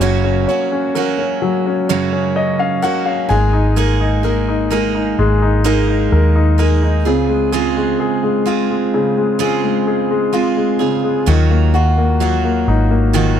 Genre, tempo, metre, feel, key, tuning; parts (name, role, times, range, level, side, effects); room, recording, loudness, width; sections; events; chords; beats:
pop ballad; 64 BPM; 4/4; straight; Db major; A4 = 440 Hz
clear baby grand piano; accompaniment; 0.0-13.4 s; Db3 to Ab5; -17 LUFS; left 6 dB
picked steel-string acoustic guitar; arpeggios; 0.0-13.4 s; Gb2 to Ab4; -19 LUFS; right 14 dB
vintage muted fingered electric bass; bass; 0.0-13.4 s; Gb1 to Eb2; -15 LUFS; equal
downlifter; sound effects; 0.0-3.8 s; -40 LUFS; left 1 dB
little or no reverb; dry, close 1970s-style studio recording; -13 LUFS; side -9 dB against mid
0.0-13.4 A section
grand piano fill 1.9-3.8
0.0 Gb; 3.3 Absus2; 7.0 Dbmaj7; 11.3 Ebmadd9
| 0.02 0.96 1.89 2.83 | 3.77 4.71 5.64 6.58 | 7.52 8.46 9.39 10.33 | 11.27 12.21 13.14